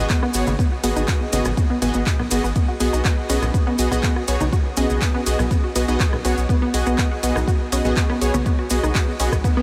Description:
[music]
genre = progressive house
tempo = 122 BPM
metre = 4/4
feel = straight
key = B major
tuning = A4 = 440 Hz
[part]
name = supersaw stab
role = stabs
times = 0.0-9.3 s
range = B3 to D#5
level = -26 LUFS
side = equal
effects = sidechain pumping, analog delay
[part]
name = saturated sub bass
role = bass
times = 0.0-9.4 s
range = G#1 to B1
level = -26 LUFS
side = equal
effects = sidechain pumping
[part]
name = unison pluck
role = arpeggios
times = 0.1-9.6 s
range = B2 to F#4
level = -28 LUFS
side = equal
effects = sidechain pumping, analog delay
[part]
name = deep house drum kit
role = drums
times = 0.1-9.4 s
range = handclaps, hi-hat, rim click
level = -31 LUFS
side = equal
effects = none
[part]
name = electronic kick drum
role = drums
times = 0.1-9.5 s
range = none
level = -22 LUFS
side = equal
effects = none
[part]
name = maracas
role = percussion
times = 0.1-9.5 s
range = none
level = -34 LUFS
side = equal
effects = none
[part]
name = congas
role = percussion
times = 0.5-9.4 s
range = none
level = -35 LUFS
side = equal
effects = none
[part]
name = reverse cymbal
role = sound effects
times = 9.6 s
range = none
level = -42 LUFS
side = equal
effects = none
[sound]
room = moderate huge ambient reverb, RT60 7.4 s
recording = dreamy mix soaked in reverb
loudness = -20 LUFS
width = mono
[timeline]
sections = 0.0-9.6 A section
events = filter sweep on synth pluck 0.0-9.6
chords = 0.0 G#m7; 2.6 B6

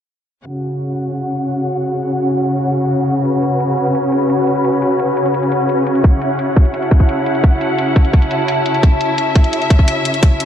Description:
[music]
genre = dark technical drum and bass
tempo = 172 BPM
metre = 4/4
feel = straight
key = F# minor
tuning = A4 = 440 Hz
[part]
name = clear studio string section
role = sustained chords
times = 0.5-10.4 s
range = C#3 to F#5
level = -16 LUFS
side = equal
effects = vintage 12-bit sampler grit, sidechain pumping
[part]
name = electronic hi-hat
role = drums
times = 0.5-10.4 s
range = none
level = -27 LUFS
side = left 1 dB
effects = overdrive, low-pass filter on hats
[part]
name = warbly tape-like pad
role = texture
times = 1.8-10.4 s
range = F#4 to A5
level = -20 LUFS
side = left 1 dB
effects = chorus, built-in reverb, sidechain pumping
[part]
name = electronic kick drum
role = drums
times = 6.0-10.3 s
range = none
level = -10 LUFS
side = equal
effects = overdrive
[sound]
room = light reverb, digital ambience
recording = low-pass filter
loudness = -13 LUFS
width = side -9 dB against mid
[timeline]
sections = 0.5-10.4 A section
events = fade-in on ambient pad 0.5-10.4; filter sweep on drum 0.5-10.4; filter sweep 0.5-10.4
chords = 0.5 F#5

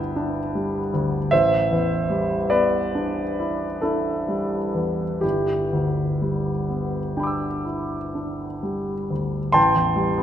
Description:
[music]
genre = classical, impressionist solo piano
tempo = 40-52 BPM (dotted quarters)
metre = 9/8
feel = rubato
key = G major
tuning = A4 = 443 Hz
[part]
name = clear grand piano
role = solo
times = 0.0-10.2 s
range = G1 to E6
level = -21 LUFS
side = equal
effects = none
[sound]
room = wet concert hall reverb, RT60 1.8 s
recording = none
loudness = -21 LUFS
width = side -10 dB against mid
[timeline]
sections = 0.0-9.6 A section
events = none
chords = 0.0 G6; 1.3 Am11; 5.2 G6; 9.6 Am7

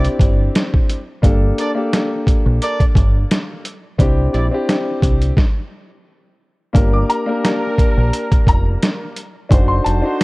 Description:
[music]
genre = hip hop, boom-bap hip-hop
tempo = 87 BPM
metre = 4/4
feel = swing 54% on 16ths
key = G harmonic minor from 6.7 s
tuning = A4 = 440 Hz
[part]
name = dark grand piano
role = accompaniment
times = 0.0-10.2 s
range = Bb3 to C5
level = -21 LUFS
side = left 1 dB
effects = cassette tape, high-pass filter, low-pass filter
[part]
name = clear horn section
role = stabs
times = 0.0-10.2 s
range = D4 to D5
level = -26 LUFS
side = right 1 dB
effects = high-pass filter, low-pass filter, tape echo
[part]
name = deep dub fingered electric bass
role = bass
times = 0.0-10.0 s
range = F1 to C2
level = -16 LUFS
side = equal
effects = none
[part]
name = boom bap sampler-style drum kit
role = drums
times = 0.0-10.2 s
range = hi-hat, kick drum, snare drum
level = -15 LUFS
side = equal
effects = none
[part]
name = clear upright piano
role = melody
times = 6.9-10.2 s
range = A5 to D6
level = -23 LUFS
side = left 1 dB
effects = high-pass filter, low-pass filter
[sound]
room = small room ambience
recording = worn, warbling old tape, cassette tape, warbly pitch drift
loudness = -14 LUFS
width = side -24 dB against mid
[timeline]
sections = 0.0-6.7 A section; 6.7-10.2 B section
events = stop 5.4-6.7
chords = 0.0 Cadd9; 1.2 Gmadd9; 4.0 Cadd9; 5.4 N.C.; 6.7 Gm; 9.5 D7b9

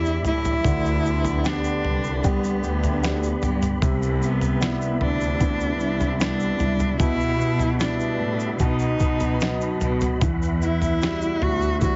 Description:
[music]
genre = pop ballad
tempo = 75 BPM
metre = 4/4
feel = straight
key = E minor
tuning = A4 = 442 Hz
[part]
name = warm cello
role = melody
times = 0.0-12.0 s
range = B3 to F#4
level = -29 LUFS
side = equal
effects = none
[part]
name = clear upright piano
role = accompaniment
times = 0.0-12.0 s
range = B2 to G4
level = -30 LUFS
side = equal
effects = none
[part]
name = percussive tonewheel organ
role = sustained chords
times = 0.0-12.0 s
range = F#4 to B5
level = -37 LUFS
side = equal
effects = overdrive, chorus vibrato, fast rotary speaker
[part]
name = fingerpicked steel-string acoustic guitar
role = arpeggios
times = 0.0-12.0 s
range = E2 to G4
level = -35 LUFS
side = equal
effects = none
[part]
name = warm chamber cello section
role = bass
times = 0.0-12.0 s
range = C2 to B2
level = -28 LUFS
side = equal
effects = none
[part]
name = tube shaker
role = percussion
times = 0.1-12.0 s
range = none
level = -46 LUFS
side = equal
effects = none
[part]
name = boom bap sampler-style drum kit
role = drums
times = 0.2-12.0 s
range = kick drum, snare drum, toms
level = -28 LUFS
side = equal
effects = none
[sound]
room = little or no reverb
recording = heavily compressed radio sound, multiband compression, nothing above 7.7 kHz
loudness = -23 LUFS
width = mono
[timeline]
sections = 0.0-12.0 A section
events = none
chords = 0.0 Em7; 0.6 G; 3.8 Cmaj7; 7.0 Em/B; 8.6 B; 10.2 Emadd9

